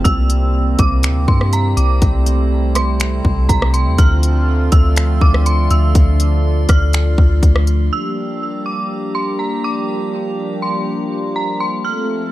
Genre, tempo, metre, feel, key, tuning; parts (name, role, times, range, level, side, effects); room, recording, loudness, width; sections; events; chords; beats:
hip hop, atmospheric cloud-rap; 122 BPM; 4/4; half-time; G dorian; A4 = 438 Hz
dark detuned synth bell; melody; 0.0-12.3 s; Bb5 to F6; -23 LUFS; right 2 dB; chorus, tremolo, digital delay
warm analog pad; sustained chords; 0.0-12.3 s; C3 to A4; -21 LUFS; right 2 dB; chorus, sidechain pumping
soft 808-style bass; bass; 0.0-7.9 s; C2 to G2; -14 LUFS; equal
drifting glass-harmonics texture; texture; 0.0-12.3 s; E4 to C6; -31 LUFS; right 1 dB; chorus, built-in reverb
trap drum kit; drums; 0.1-7.8 s; finger snaps, hi-hat, kick drum, rim click; -15 LUFS; equal
little or no reverb; -13 LUFS; side -15 dB against mid
0.0-7.9 A section; 7.9-12.3 B section
0.1 C7; 4.0 Dm7; 7.9 Gm7
| 0.05 0.54 1.03 1.53 | 2.02 2.51 3.00 3.49 | 3.98 4.48 4.97 5.46 | 5.95 6.44 6.93 7.43 | 7.92 8.41 8.90 9.39 | 9.89 10.38 10.87 11.36 | 11.85